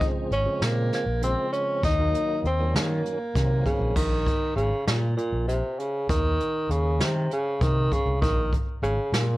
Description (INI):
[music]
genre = progressive instrumental, band music in an uneven meter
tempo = 197 BPM (eighths)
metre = 7/8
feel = straight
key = unclear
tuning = A4 = 442 Hz
[part]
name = mellow tenor saxophone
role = melody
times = 0.0-9.4 s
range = Bb2 to Eb4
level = -26 LUFS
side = equal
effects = analog delay
[part]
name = tonewheel organ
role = accompaniment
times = 0.0-4.0 s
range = Db3 to Eb4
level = -31 LUFS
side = right 1 dB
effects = overdrive, chorus vibrato, fast rotary speaker
[part]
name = jazz brush drum kit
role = drums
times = 0.0-9.3 s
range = crash cymbal, hi-hat, kick drum, snare drum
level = -28 LUFS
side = equal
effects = none
[part]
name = overdriven fingered electric bass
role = bass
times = 0.3-9.4 s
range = Ab1 to Eb3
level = -26 LUFS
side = equal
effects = none
[sound]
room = light reverb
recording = worn, warbling old tape, cassette tape, warbly pitch drift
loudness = -22 LUFS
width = side -17 dB against mid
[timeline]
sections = 0.0-4.0 A section; 4.0-9.4 B section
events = none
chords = 0.0 Bbm7; 1.8 Ebm; 4.0 Absus2 (rootless); 6.1 Cm; 8.2 Absus2 (rootless)